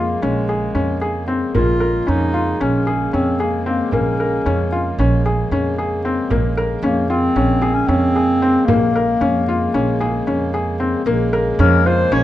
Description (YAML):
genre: contemporary instrumental, chamber music in an uneven meter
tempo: 227 BPM (eighths)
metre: 9/8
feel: straight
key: Bb minor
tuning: A4 = 440 Hz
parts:
  - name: dark clarinet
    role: melody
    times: 0.0-12.2 s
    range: Ab3 to Db5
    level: -19 LUFS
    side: left 1 dB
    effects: none
  - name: hand-pumped harmonium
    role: sustained chords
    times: 0.0-12.2 s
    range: Db3 to Bb3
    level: -24 LUFS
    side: equal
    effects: none
  - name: felt-muted upright piano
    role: arpeggios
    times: 0.0-12.2 s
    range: Bb3 to Bb4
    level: -20 LUFS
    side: left 3 dB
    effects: none
  - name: upright bass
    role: bass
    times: 0.0-12.2 s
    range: Bb1 to F2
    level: -21 LUFS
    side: right 2 dB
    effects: none
  - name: frame drum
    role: percussion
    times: 1.5-10.9 s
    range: none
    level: -25 LUFS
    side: right 3 dB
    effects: none
room: light reverb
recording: close, detailed microphones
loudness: -15 LUFS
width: side -13 dB against mid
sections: 0.0-11.1 A section; 11.1-12.2 B section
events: none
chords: 0.0 Bbm7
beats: 0.22 0.48 0.75 1.01 1.28 | 1.54 1.81 2.07 2.34 2.60 2.87 3.13 3.40 3.66 | 3.93 4.19 4.46 4.72 4.99 5.25 5.51 5.78 6.04 | 6.31 6.57 6.84 7.10 7.37 7.63 7.89 8.16 8.42 | 8.69 8.95 9.21 9.48 9.74 10.01 10.27 10.53 10.80 | 11.06 11.32 11.59 11.85 12.11